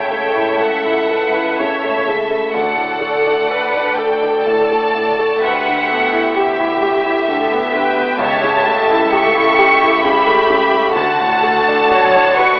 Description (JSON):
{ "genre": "classical, romantic movement for piano and orchestra", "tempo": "64 BPM", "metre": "3/4", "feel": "rubato", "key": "D major", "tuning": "A4 = 442 Hz", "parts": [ { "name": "clear concert grand piano", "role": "melody", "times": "0.0-12.6 s", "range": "C#2 to A4", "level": "-16 LUFS", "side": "equal", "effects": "none" }, { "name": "clear symphonic violin section", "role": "melody", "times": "0.0-12.6 s", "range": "E5 to C#6", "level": "-17 LUFS", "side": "equal", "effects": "none" }, { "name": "warm symphonic violin section", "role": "second line", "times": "0.0-12.6 s", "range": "F#4 to F#5", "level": "-19 LUFS", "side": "equal", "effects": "none" }, { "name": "warm symphonic viola section", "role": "accompaniment", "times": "0.0-12.6 s", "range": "F#4 to C#5", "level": "-19 LUFS", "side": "equal", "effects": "none" }, { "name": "clear symphonic double bass section", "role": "bass", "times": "0.0-11.9 s", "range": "C#2 to D2", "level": "-37 LUFS", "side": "equal", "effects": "none" }, { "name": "rich symphonic cello section", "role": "bass", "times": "0.0-12.6 s", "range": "C#2 to D2", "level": "-29 LUFS", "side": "equal", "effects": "none" } ], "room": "wet concert hall reverb, RT60 2.2 s", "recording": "telephone sound", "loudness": "-12 LUFS", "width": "side -30 dB against mid", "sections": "0.0-12.6 A section", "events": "none", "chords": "0.0 A7/C#; 2.5 D; 5.4 Em7/D; 8.2 A7/C#; 11.0 D" }